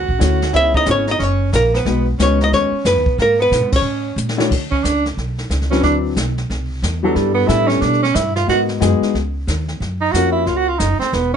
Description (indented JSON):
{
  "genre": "jazz, small-group swing and bop",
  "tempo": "181 BPM",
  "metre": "4/4",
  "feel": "swing 63% on 8ths",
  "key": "unclear",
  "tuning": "A4 = 439 Hz",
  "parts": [
    { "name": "archtop guitar, miked and amplified", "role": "melody", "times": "0.0-4.2 s", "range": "A#4 to F#5", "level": "-17 LUFS", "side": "left 1 dB", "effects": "none" },
    { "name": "breathy tenor saxophone", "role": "second line", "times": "0.0-11.4 s", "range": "F#3 to F#4", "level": "-19 LUFS", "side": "right 6 dB", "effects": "none" },
    { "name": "upright bass", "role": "bass", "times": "0.0-11.4 s", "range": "E1 to B2", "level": "-20 LUFS", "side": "equal", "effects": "none" },
    { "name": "jazz brush drum kit", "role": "drums", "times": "0.1-11.4 s", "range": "brushed snare drum, crash cymbal, hi-hat, kick drum, snare drum, toms", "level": "-24 LUFS", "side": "equal", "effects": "none" },
    { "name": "warm baby grand piano", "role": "accompaniment", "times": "0.2-10.6 s", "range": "F#3 to C#5", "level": "-20 LUFS", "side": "left 6 dB", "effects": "none" }
  ],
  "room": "moderate club reverb, RT60 0.6 s",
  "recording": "nothing above 10.7 kHz",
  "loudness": "-14 LUFS",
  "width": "side -8 dB against mid",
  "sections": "0.0-4.5 A section; 4.5-11.4 B section",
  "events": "band accent 3.7; drum fill 4.2-4.5; tenor saxophone solo 4.5-11.4",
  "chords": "0.0 F#m7; 0.5 C#m9; 1.2 F#; 1.9 B6; 3.2 E6; 3.8 A; 4.5 Dmaj7(no3); 5.8 D13; 7.2 G69; 8.5 G#m9; 9.1 C#sus2; 9.8 F#maj7",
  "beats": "0.20 | 0.54 0.86 1.20 1.53 | 1.86 2.19 2.52 2.85 | 3.18 3.51 3.84 4.17 | 4.50 4.84 5.17 5.50 | 5.83 6.16 6.49 6.83 | 7.16 7.49 7.82 8.15 | 8.48 8.81 9.14 9.47 | 9.81 10.14 10.47 10.80 | 11.13"
}